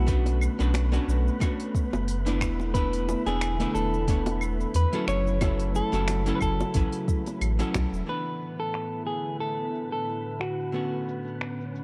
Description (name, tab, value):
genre	sunset chillout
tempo	90 BPM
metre	4/4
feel	swing 56% on 16ths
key	unclear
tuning	A4 = 440 Hz
part	semi-hollow electric guitar	melody	0.0-11.4 s	F#4 to C#5	-34 LUFS	equal	digital delay
part	archtop guitar, miked and amplified	accompaniment	0.0-11.8 s	D3 to C#5	-34 LUFS	equal	digital delay
part	lush unison pad	sustained chords	0.0-11.8 s	A2 to E4	-38 LUFS	equal	chorus
part	warm sub bass	bass	0.0-8.0 s	E1 to E2	-29 LUFS	equal	none
part	wind-like tuned noise texture	texture	0.0-11.8 s	B4 to B5	-46 LUFS	equal	built-in reverb
part	electronic kick drum	drums	0.1-7.9 s	none	-30 LUFS	equal	small room ambience
part	smooth R&B drum kit	drums	0.1-11.8 s	cabasa, claves, finger snaps, hi-hat	-39 LUFS	equal	low-pass filter on hats, small room ambience, low-pass filter on perc, low-pass filter on snare
part	bongos	percussion	0.3-7.9 s	none	-37 LUFS	equal	none
room	light reverb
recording	dark, warm production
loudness	-27 LUFS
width	mono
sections	0.0-8.1 A section; 8.1-11.8 B section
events	none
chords	0.1 Bm9; 2.4 E7sus4; 5.1 F#m7; 8.1 E7sus4; 10.7 Bm9